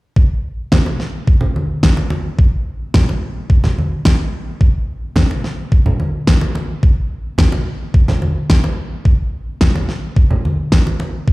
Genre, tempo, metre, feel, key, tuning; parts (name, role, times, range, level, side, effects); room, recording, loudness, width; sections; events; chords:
nu-disco; 108 BPM; 4/4; straight
electronic kick drum; drums; 0.2-11.3 s; -12 LUFS; equal; small room ambience
electronic snare drum; drums; 0.7-10.8 s; -20 LUFS; equal; small room ambience
congas; percussion; 0.7-11.1 s; -20 LUFS; equal
light reverb, small room ambience; played on a big sound system in a bare room, large studio reverb; -14 LUFS; side -21 dB against mid
0.2-11.3 A section